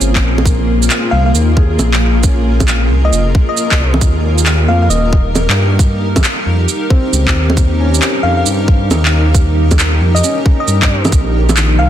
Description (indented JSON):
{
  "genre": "future garage",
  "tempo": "135 BPM",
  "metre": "4/4",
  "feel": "swing 65% on 16ths",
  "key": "unclear",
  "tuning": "A4 = 439 Hz",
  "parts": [
    { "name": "felt-muted upright piano", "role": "accompaniment", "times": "0.0-11.9 s", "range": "Eb3 to Bb4", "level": "-23 LUFS", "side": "left 3 dB", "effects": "vintage 12-bit sampler grit, sidechain pumping, low-pass filter, tape echo" },
    { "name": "granular cloud pad", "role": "sustained chords", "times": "0.0-11.9 s", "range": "Bb3 to Ab5", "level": "-19 LUFS", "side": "equal", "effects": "built-in reverb, sidechain pumping" },
    { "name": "dark detuned saw bass", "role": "bass", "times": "0.0-11.9 s", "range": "Eb1 to G2", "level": "-13 LUFS", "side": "equal", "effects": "sidechain pumping" },
    { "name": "electronic shaker, handclaps and bongos", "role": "drums", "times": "0.0-11.7 s", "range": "none", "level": "-17 LUFS", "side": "right 2 dB", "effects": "none" },
    { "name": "electronic kick drum", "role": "drums", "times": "0.2-11.2 s", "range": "none", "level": "-12 LUFS", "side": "equal", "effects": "none" },
    { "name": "soft struck synth lead", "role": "melody", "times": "1.1-5.3, 8.2-11.9 s", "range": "Eb5 to F5", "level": "-21 LUFS", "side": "left 1 dB", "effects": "chorus, tape echo" }
  ],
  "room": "little or no reverb",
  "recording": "dense, heavily limited modern master",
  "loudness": "-10 LUFS",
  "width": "side -11 dB against mid",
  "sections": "0.0-11.1 A section",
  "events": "filter sweep on felt piano 0.0-11.1",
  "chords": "0.0 Bbm7; 4.0 Eb7; 11.1 Bbm7"
}